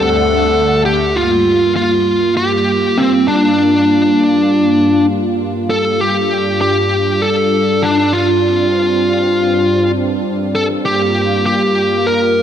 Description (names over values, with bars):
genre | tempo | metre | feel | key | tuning
synthwave | 99 BPM | 4/4 | straight | G minor | A4 = 440 Hz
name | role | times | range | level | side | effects
high-gain lead guitar | melody | 0.0-12.4 s | C4 to Bb4 | -13 LUFS | equal | distortion, ping-pong delay
lush unison pad | sustained chords | 0.0-12.4 s | D2 to F#5 | -17 LUFS | equal | chorus
room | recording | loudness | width
moderate lush hall reverb, RT60 2.5 s | dark, warm production | -11 LUFS | side -9 dB against mid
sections
0.0-1.2 A section; 1.2-12.4 B section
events
none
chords
0.0 D; 1.2 Gm7; 6.0 Dm/G; 8.4 Csus2/G; 10.9 Gm7